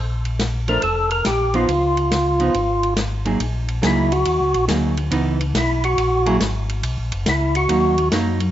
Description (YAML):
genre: soul jazz organ trio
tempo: 140 BPM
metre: 4/4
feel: swing 67% on 8ths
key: F# major from 3.4 s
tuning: A4 = 440 Hz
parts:
  - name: mellow tonewheel organ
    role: bass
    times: 0.0-8.5 s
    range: F1 to F#2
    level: -22 LUFS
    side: equal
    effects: chorus vibrato, slow rotary speaker
  - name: warm soul drum kit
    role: drums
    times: 0.2-8.5 s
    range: hi-hat, ride cymbal, snare drum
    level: -26 LUFS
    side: left 1 dB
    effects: none
  - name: percussive tonewheel organ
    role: melody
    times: 0.7-8.1 s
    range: E4 to Bb4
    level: -20 LUFS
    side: equal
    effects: slow rotary speaker, overdrive
  - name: archtop guitar, miked and amplified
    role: accompaniment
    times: 0.7-8.4 s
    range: E3 to Ab4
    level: -23 LUFS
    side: right 2 dB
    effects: none
room: moderate large studio reverb, RT60 1.5 s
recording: nothing above 7.8 kHz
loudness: -17 LUFS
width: side -12 dB against mid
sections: 0.0-3.4 A section; 3.4-8.5 B section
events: tonewheel organ solo 3.4-8.5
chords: 0.0 Bbmaj7(no3); 1.7 Dbadd9; 3.4 F#69; 5.1 C#m9; 6.0 F#9; 6.8 Bmaj7